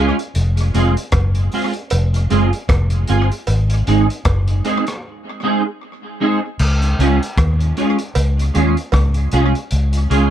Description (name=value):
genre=roots reggae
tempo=77 BPM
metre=4/4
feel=swing 58% on 16ths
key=Db major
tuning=A4 = 440 Hz
part: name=clean electric guitar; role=accompaniment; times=0.0-10.3 s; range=Ab3 to Ab4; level=-19 LUFS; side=right 3 dB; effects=ensemble chorus, tape echo
part: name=vintage muted fingered electric bass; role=bass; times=0.0-10.3 s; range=F1 to Eb2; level=-15 LUFS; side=equal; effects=none
part: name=crunchy breakbeat drum kit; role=drums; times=0.2-10.3 s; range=crash cymbal, hi-hat, kick drum, rim click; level=-23 LUFS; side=equal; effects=tape echo
part: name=cowbell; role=percussion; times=1.1-9.1 s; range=none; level=-26 LUFS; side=right 8 dB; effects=none
room=little or no reverb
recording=dark, warm production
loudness=-14 LUFS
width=side -11 dB against mid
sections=0.0-6.6 A section; 6.6-10.3 A section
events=break 5.0-6.6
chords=0.3 Fm; 3.5 Ab; 6.6 Db